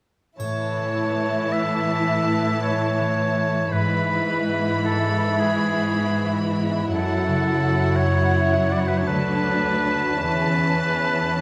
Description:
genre	classical, slow romantic movement for symphony orchestra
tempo	55 BPM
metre	3/4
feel	uneven beats, rubato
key	A major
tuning	A4 = 440 Hz
part	rich studio violin section	melody	0.4-11.4 s	F#5 to B5	-34 LUFS	equal	none
part	clear oboe	second line	0.4-11.4 s	G#4 to E5	-27 LUFS	equal	none
part	rich chamber violin section	second line	0.4-11.4 s	C#4 to E4	-31 LUFS	equal	none
part	bright studio viola section	accompaniment	0.4-11.4 s	E3 to F#3	-30 LUFS	equal	none
part	concert harp	arpeggios	0.4-11.4 s	F#2 to E5	-30 LUFS	equal	none
part	rich studio cello section	bass	0.4-11.4 s	D2 to A2	-28 LUFS	equal	none
part	triangle	percussion	0.4-2.6 s	none	-50 LUFS	equal	none
room	wet scoring stage reverb, RT60 1.8 s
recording	none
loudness	-22 LUFS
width	mono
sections	0.4-11.4 A section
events	none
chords	0.4 A; 3.7 E/G#; 6.9 F#m7; 9.1 D; 10.2 A/E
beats	| 0.38 1.53 2.64 | 3.73 4.85 5.92 | 6.93 7.97 9.08 | 10.23

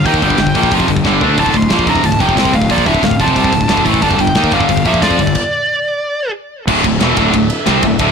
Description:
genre	heavy metal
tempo	182 BPM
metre	4/4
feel	straight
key	D minor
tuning	A4 = 438 Hz
part	high-gain lead guitar	melody	0.0-6.3 s	D5 to C6	-17 LUFS	equal	distortion, digital delay
part	distorted electric guitar	riff	0.0-8.1 s	D2 to F4	-16 LUFS	right 16 dB	overdrive
part	scooped high-gain guitar	riff	0.0-8.1 s	D2 to F4	-16 LUFS	left 12 dB	distortion
part	fuzz fingered electric bass	bass	0.0-8.1 s	D1 to F2	-18 LUFS	equal	overdrive
part	tight metal drum kit	drums	0.1-8.1 s	crash cymbal, hi-hat, kick drum, ride cymbal, snare drum, toms	-18 LUFS	equal	none
part	clear symphonic string section	sustained chords	6.7-8.1 s	D4 to E5	-24 LUFS	right 1 dB	none
part	tight distorted guitar	riff	6.7-8.1 s	D2 to C4	-19 LUFS	right 1 dB	distortion
room	light reverb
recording	blown-out, overdriven recording, overdrive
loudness	-11 LUFS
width	side -6 dB against mid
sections	0.0-6.7 A section; 6.7-8.1 B section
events	drum fill 1.1-1.4; stop 5.4-6.7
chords	0.0 G5; 1.4 Dm; 4.0 G5; 6.3 N.C.; 6.7 D5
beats	| 0.06 0.39 0.72 1.05 | 1.38 1.71 2.04 2.38 | 2.71 3.04 3.37 3.70 | 4.03 4.36 4.69 5.02 | 5.36 5.68 6.02 6.35 | 6.68 7.01 7.34 7.67 | 8.00

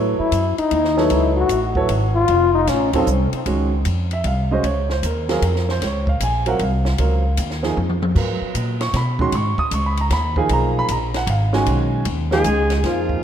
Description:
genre	modal jazz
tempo	153 BPM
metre	3/4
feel	swing 66% on 8ths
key	Bb phrygian from 3.5 s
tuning	A4 = 440 Hz
part	warm upright piano	accompaniment	0.0-13.2 s	Eb3 to Eb6	-22 LUFS	right 3 dB	none
part	upright bass	bass	0.0-13.2 s	F1 to Cb3	-20 LUFS	equal	none
part	mellow trombone	second line	0.2-3.0, 12.3-13.2 s	F3 to F#4	-19 LUFS	left 4 dB	ping-pong delay
part	compact cocktail drum kit	drums	0.3-13.2 s	crash cymbal, hi-hat, kick drum, ride cymbal, snare drum, toms	-27 LUFS	left 1 dB	none
part	breathy alto saxophone	melody	12.3-13.2 s	F4 to Ab4	-20 LUFS	left 2 dB	ping-pong delay
room	moderate lush hall reverb, RT60 1.9 s, studio ambience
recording	dreamy mix soaked in reverb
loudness	-17 LUFS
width	side -9 dB against mid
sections	0.0-3.5 A section; 3.5-12.8 A section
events	trombone solo 0.0-3.5; drum fill 7.8-8.2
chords	0.0 F#m11; 2.3 F; 3.5 Bbm11; 8.2 Abm11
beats	0.32 0.71 | 1.11 1.50 1.89 | 2.28 2.68 3.07 | 3.46 3.85 4.25 | 4.64 5.03 5.42 | 5.81 6.20 6.59 | 6.98 7.37 7.76 | 8.15 8.54 8.94 | 9.32 9.71 10.11 | 10.49 10.88 11.27 | 11.66 12.05 12.45 | 12.84 13.23

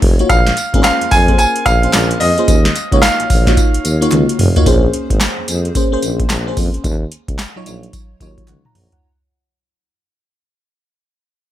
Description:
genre	R&B, new jack swing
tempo	110 BPM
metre	4/4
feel	swing 62% on 16ths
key	Bb minor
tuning	A4 = 440 Hz
part	FM electric piano with soft pad layer	accompaniment	0.0-9.2 s	Gb3 to Bb5	-19 LUFS	equal	chorus, phaser
part	warm tuba	bass	0.0-8.9 s	F1 to F2	-18 LUFS	equal	none
part	booming analog drum machine	drums	0.0-9.0 s	handclaps, hi-hat, kick drum, snare drum, tambourine, toms	-15 LUFS	equal	overdrive
part	bright baby grand piano	melody	0.3-4.1 s	Eb5 to Ab5	-16 LUFS	equal	tape echo
part	group handclap	percussion	0.8-8.6 s	none	-30 LUFS	right 3 dB	none
room	digital ambience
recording	none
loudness	-11 LUFS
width	side -12 dB against mid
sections	0.0-4.7 A section; 4.7-9.0 B section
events	drum fill 4.1-4.7, 8.5-9.0; fade-out 4.7-9.0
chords	0.3 Bbm9; 2.5 Ebm9; 4.7 Bbm9; 6.8 Ebm9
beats	| 0.30 0.84 1.39 1.94 | 2.48 3.03 3.57 4.12 | 4.66 5.21 5.75 6.30 | 6.84 7.39 7.93 8.48

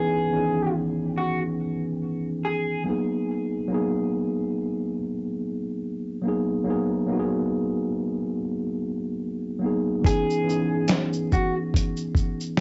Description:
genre	lo-fi hip hop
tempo	71 BPM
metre	4/4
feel	swing 57% on 16ths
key	C# minor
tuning	A4 = 441 Hz
part	electric guitar through a small old amp	melody	0.0-2.8, 10.1-11.5 s	F#4 to G#4	-31 LUFS	equal	lush chorus, low-pass filter, plate reverb
part	mellow tine electric piano	accompaniment	0.0-12.6 s	D#3 to B4	-27 LUFS	equal	cassette tape, low-pass filter, plate reverb
part	dusty soul sampler-style drum kit	drums	10.0-12.6 s	hi-hat, kick drum, shaker, snare drum	-25 LUFS	equal	none
room	moderate studio reverb, RT60 0.6 s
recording	home recording on cassette, nothing above 7.8 kHz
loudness	-26 LUFS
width	mono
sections	0.0-12.6 A section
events	none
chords	0.0 C#m9; 2.9 G#m9; 10.0 C#m9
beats	0.75 1.59 2.44 | 3.29 4.13 4.97 5.82 | 6.67 7.51 8.36 9.20 | 10.05 10.89 11.74 12.58

